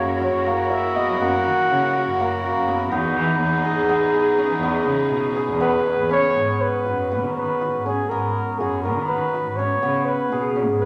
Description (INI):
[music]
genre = contemporary instrumental, chamber music in an uneven meter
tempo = 244 BPM (eighths)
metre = 7/8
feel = straight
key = G# minor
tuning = A4 = 440 Hz
[part]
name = warm flugelhorn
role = melody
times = 0.0-2.6, 5.6-10.9 s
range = G#4 to F#5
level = -25 LUFS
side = equal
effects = none
[part]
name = warm clarinet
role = second line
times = 0.0-6.1 s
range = D#4 to F#4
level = -27 LUFS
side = equal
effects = none
[part]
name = rich studio string section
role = sustained chords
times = 0.0-6.3 s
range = E3 to A#4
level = -34 LUFS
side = equal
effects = none
[part]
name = hammered dulcimer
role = arpeggios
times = 0.0-10.9 s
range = A#3 to G#4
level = -25 LUFS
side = equal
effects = none
[part]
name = muted cello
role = bass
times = 0.0-10.9 s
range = E2 to F#3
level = -29 LUFS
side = equal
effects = none
[sound]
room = wet recital hall reverb, RT60 1.4 s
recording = none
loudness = -21 LUFS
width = mono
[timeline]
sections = 0.0-6.4 A section; 6.4-10.9 B section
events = none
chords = 0.0 F#7; 2.9 Emaj7; 6.4 G#m7; 9.8 C#5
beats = 0.22 0.47 0.72 0.96 | 1.21 1.46 1.71 1.95 2.19 2.44 2.68 | 2.92 3.17 3.41 3.65 3.90 4.14 4.38 | 4.63 4.88 5.12 5.37 5.62 5.87 6.12 | 6.37 6.62 6.87 7.11 7.36 7.61 7.86 | 8.10 8.35 8.60 8.84 9.09 9.33 9.57 | 9.82 10.06 10.31 10.55 10.80